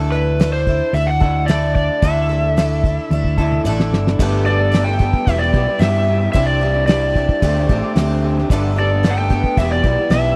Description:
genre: folk rock and heartland rock.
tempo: 111 BPM.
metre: 4/4.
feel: straight.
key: G major.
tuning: A4 = 440 Hz.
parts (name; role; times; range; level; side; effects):
picked twelve-string acoustic guitar; accompaniment; 0.0-10.4 s; G2 to A4; -28 LUFS; equal; none.
electric guitar through a small old amp; riff; 0.0-10.4 s; E2 to A4; -26 LUFS; equal; lush chorus.
hollow-body short-scale fingered electric bass; bass; 0.0-10.4 s; E1 to G2; -21 LUFS; equal; none.
overdriven slide guitar; melody; 0.1-10.4 s; B4 to G5; -22 LUFS; equal; none.
cloth-damped thuddy drum kit; drums; 0.4-10.2 s; crash cymbal, hi-hat, kick drum, snare drum, toms; -19 LUFS; equal; none.
mellow tonewheel organ; sustained chords; 4.2-10.4 s; D4 to C5; -34 LUFS; equal; none.
room: small room ambience.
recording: dry, close 1970s-style studio recording.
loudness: -17 LUFS.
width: mono.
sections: 0.0-4.2 A section; 4.2-10.4 B section.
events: drum fill 3.1-4.2.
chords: 0.0 Dsus2; 4.2 Gadd9; 5.3 Em; 6.3 Cadd9; 7.4 D7sus4; 8.5 Gadd9; 9.6 Em.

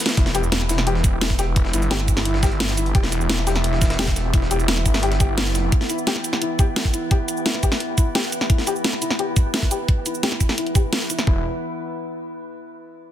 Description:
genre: dark technical drum and bass.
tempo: 173 BPM.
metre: 4/4.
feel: straight.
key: E minor.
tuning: A4 = 440 Hz.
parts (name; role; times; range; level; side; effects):
metallic inharmonic drone; sustained chords; 0.0-11.4 s; E3 to E5; -28 LUFS; right 1 dB; chorus, built-in reverb, sidechain pumping.
breakbeat sampler-style drum kit; drums; 0.0-5.6 s; hi-hat, snare drum; -33 LUFS; equal; none.
drum and bass drum kit; drums; 0.0-11.3 s; hi-hat, shaker, snare drum; -23 LUFS; equal; small room ambience.
felt-muted upright piano; arpeggios; 0.2-11.4 s; E4 to G4; -28 LUFS; left 5 dB; sidechain pumping, low-pass filter, dub echo.
snarling distorted saw bass; bass; 0.2-5.7, 11.3-11.4 s; E1 to G1; -22 LUFS; equal; distortion, tube saturation.
electronic kick drum; drums; 0.2-11.4 s; none; -18 LUFS; equal; small room ambience.
room: little or no reverb.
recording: dense, heavily limited modern master.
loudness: -18 LUFS.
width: side -11 dB against mid.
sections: 0.2-11.3 A section; 11.3-12.7 B section.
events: break 0.0; drum fill 0.0; filter sweep on felt piano 0.2-11.3.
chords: 0.2 E5.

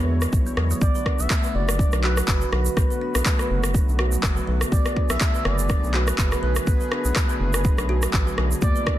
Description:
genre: afro house.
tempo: 123 BPM.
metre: 4/4.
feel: swing 56% on 16ths.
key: B dorian.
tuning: A4 = 441 Hz.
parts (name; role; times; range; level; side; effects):
expressive synth lead; melody; 0.0-9.0 s; B4 to E5; -30 LUFS; equal; wide subtle chorus, tape echo.
warm analog pad; sustained chords; 0.0-9.0 s; D3 to C#5; -32 LUFS; equal; chorus, tremolo, sidechain pumping.
kalimba; arpeggios; 0.0-8.9 s; F#3 to B4; -31 LUFS; right 1 dB; sidechain pumping, tape echo.
round analog bass; bass; 0.0-8.7 s; F#1 to E2; -24 LUFS; equal; tube saturation, sidechain pumping.
electronic rim click and handclaps; drums; 0.2-9.0 s; none; -27 LUFS; equal; overdrive.
egg shaker; percussion; 0.2-8.8 s; none; -34 LUFS; right 7 dB; none.
electronic kick drum; drums; 0.3-9.0 s; none; -22 LUFS; equal; none.
congas; percussion; 8.6-8.7 s; none; -34 LUFS; left 5 dB; none.
room: small room ambience.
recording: dense, heavily limited modern master.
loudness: -19 LUFS.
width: side -13 dB against mid.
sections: 0.8-9.0 A section.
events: drop 0.8-9.0.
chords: 0.0 E7; 0.8 Bm7.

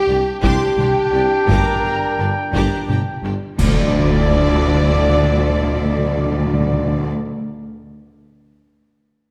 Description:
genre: cinematic, epic orchestral film score.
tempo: 57 BPM (dotted quarters).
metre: 6/8.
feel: straight.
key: D minor.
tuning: A4 = 440 Hz.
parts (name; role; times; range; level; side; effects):
warm symphonic violin section; melody; 0.0-7.1 s; G4 to D5; -33 LUFS; equal; none.
large flute ensemble; second line; 0.0-7.1 s; D5 to Bb5; -34 LUFS; equal; none.
clear trombone section; sustained chords; 0.0-7.1 s; F3 to D4; -30 LUFS; equal; none.
dark French horn section; sustained chords; 0.0-7.1 s; G4 to D5; -24 LUFS; equal; none.
warm trumpet section; stabs; 0.0-7.1 s; D5 to G5; -28 LUFS; equal; none.
clear symphonic violin section; second line; 0.1-7.1 s; A4 to D6; -36 LUFS; equal; none.
clear symphonic viola section; accompaniment; 0.1-7.1 s; D4 to G4; -32 LUFS; equal; none.
clear symphonic double bass section; bass; 0.1-7.1 s; G1 to D2; -26 LUFS; equal; none.
mellow tuba; bass; 0.1-7.1 s; G1 to D2; -27 LUFS; equal; none.
rich symphonic cello section; bass; 0.1-7.1 s; C2 to G2; -26 LUFS; equal; none.
taiko ensemble; drums; 0.4-3.6 s; none; -24 LUFS; equal; none.
clash cymbals and concert bass drum; percussion; 3.6-4.9 s; none; -25 LUFS; equal; none.
timpani; percussion; 3.6-7.1 s; D3; -24 LUFS; equal; none.
impact; sound effects; 3.6-5.7 s; none; barely audible; none; none.
room: wet scoring stage reverb, RT60 1.7 s.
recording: none.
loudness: -17 LUFS.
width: mono.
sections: 0.0-3.6 A section; 3.6-7.8 B section.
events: band accent 3.6-4.3; impact 3.6-5.7.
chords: 0.0 Csus2; 1.5 Gm; 3.6 Dmadd9.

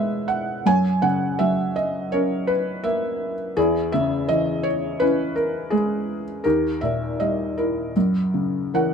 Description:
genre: classical, lyrical solo piano.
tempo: 82 BPM.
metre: 4/4.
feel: rubato.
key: unclear.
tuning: A4 = 443 Hz.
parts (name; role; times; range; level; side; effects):
felt-muted upright piano; solo; 0.0-8.9 s; D#2 to G#5; -20 LUFS; equal; none.
room: light reverb.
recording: minimal, uncompressed stereo recording.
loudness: -20 LUFS.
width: side -6 dB against mid.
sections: 0.0-8.9 A section.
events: none.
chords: 0.0 E; 0.7 F#; 3.6 C#m/E; 6.5 D#; 8.0 F#7.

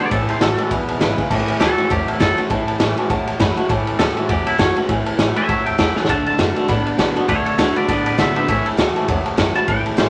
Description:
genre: rockabilly.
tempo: 201 BPM.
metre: 4/4.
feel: swing 58% on 8ths.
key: A major.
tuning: A4 = 439 Hz.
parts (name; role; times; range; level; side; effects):
twangy electric guitar; melody; 0.0-10.1 s; E4 to A5; -24 LUFS; equal; none.
honky-tonk upright piano; accompaniment; 0.0-10.1 s; B4 to B5; -29 LUFS; equal; none.
picked steel-string acoustic guitar; accompaniment; 0.0-10.1 s; E2 to F#4; -26 LUFS; equal; none.
twangy electric guitar; riff; 0.0-10.1 s; E2 to B3; -26 LUFS; equal; spring reverb.
upright bass; bass; 0.1-10.1 s; E1 to B2; -28 LUFS; equal; none.
raw garage drum kit; drums; 0.1-10.1 s; crash cymbal, kick drum, ride cymbal, snare drum; -22 LUFS; equal; none.
room: moderate studio reverb, RT60 0.5 s.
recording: none.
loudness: -18 LUFS.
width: mono.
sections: 0.0-1.3 A section; 1.3-10.1 B section.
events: honky-tonk piano fill 0.7-1.3; clean electric guitar solo 1.3-10.1; drum fill 5.9.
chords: 0.1 A6; 0.7 E6; 1.3 A6; 6.1 D6; 8.5 A6.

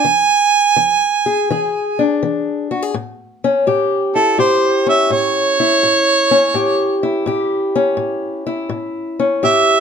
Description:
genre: acoustic country blues, solo or duo.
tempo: 83 BPM.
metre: 4/4.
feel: swing 67% on 8ths.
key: A mixolydian.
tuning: A4 = 438 Hz.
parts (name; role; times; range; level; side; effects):
warm harmonica; melody; 0.0-9.8 s; A4 to G#5; -13 LUFS; right 4 dB; none.
fingerpicked old ladder-braced acoustic guitar; accompaniment; 0.0-9.8 s; A2 to G#4; -16 LUFS; left 3 dB; none.
room: light reverb.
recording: none.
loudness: -13 LUFS.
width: side -6 dB against mid.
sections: 0.0-2.9 A section; 2.9-9.8 B section.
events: harmonica solo 2.9-9.8.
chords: 0.0 E7; 2.9 A7.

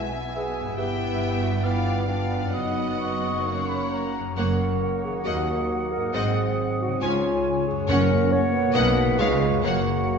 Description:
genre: classical.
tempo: 135 BPM.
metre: 4/4.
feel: uneven beats, rubato.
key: F# major from 4.4 s.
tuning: A4 = 441 Hz.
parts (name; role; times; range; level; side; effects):
rich symphonic violin section; melody; 0.0-9.9 s; F5 to G#5; -34 LUFS; left 2 dB; none.
concert flute; second line; 0.0-10.2 s; E#5 to C#6; -33 LUFS; left 3 dB; none.
dark clarinet; second line; 0.0-10.2 s; D4 to C#5; -29 LUFS; left 1 dB; none.
mellow cor anglais; second line; 0.0-10.2 s; C#5 to F5; -34 LUFS; right 2 dB; none.
warm symphonic violin section; second line; 0.0-9.9 s; C#5 to E5; -36 LUFS; left 4 dB; none.
clear studio viola section; accompaniment; 0.0-9.9 s; G#3 to C#4; -34 LUFS; right 2 dB; none.
dark bassoon; accompaniment; 0.0-10.2 s; G#3 to C#4; -31 LUFS; right 2 dB; none.
mellow French horn section; sustained chords; 0.0-10.2 s; F#3 to F#4; -31 LUFS; left 1 dB; none.
concert harp; arpeggios; 0.0-10.2 s; F#2 to D#5; -32 LUFS; left 5 dB; none.
rich chamber double bass section; bass; 0.0-10.0 s; F#1 to D#2; -30 LUFS; right 3 dB; none.
rich studio cello section; bass; 0.0-10.0 s; C#2 to C#3; -31 LUFS; right 3 dB; none.
timpani; percussion; 7.9-8.5 s; F#2; -30 LUFS; left 3 dB; none.
room: wet scoring stage reverb, RT60 1.9 s.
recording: heard from further back in the room, nothing above 7.8 kHz.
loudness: -21 LUFS.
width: side -6 dB against mid.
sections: 0.0-10.2 A section.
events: none.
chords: 0.0 E/B; 0.8 Em/G; 1.6 G7; 2.5 B/F#; 3.5 F#; 5.3 D#m; 6.1 G#7; 7.0 C#; 7.9 F#; 8.8 Bmaj7; 9.2 C#7; 9.7 F#.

